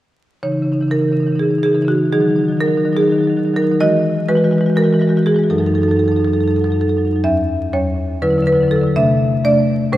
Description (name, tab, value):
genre	classical, contemporary piece for solo marimba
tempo	246 BPM (eighths)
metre	7/8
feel	straight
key	unclear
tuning	A4 = 440 Hz
part	marimba with medium hard mallets	solo	0.4-10.0 s	E2 to E5	-13 LUFS	equal	none
room	wet church reverb, RT60 3.3 s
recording	dark, warm production, vinyl crackle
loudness	-13 LUFS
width	side -14 dB against mid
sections	0.4-10.0 A section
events	none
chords	0.4 C#madd9; 2.1 D#madd11; 3.8 Emaj9; 5.5 F#m6; 7.2 Esus2; 8.2 Dadd9; 9.0 C69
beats	| 0.43 0.67 0.91 1.16 1.40 1.64 1.88 | 2.12 2.36 2.60 2.84 3.08 3.32 3.56 | 3.80 4.04 4.29 4.53 4.77 5.02 5.26 | 5.51 5.75 6.00 6.25 6.49 6.74 6.99 | 7.24 7.49 7.74 7.98 8.22 8.47 8.71 | 8.96 9.20 9.45 9.69 9.93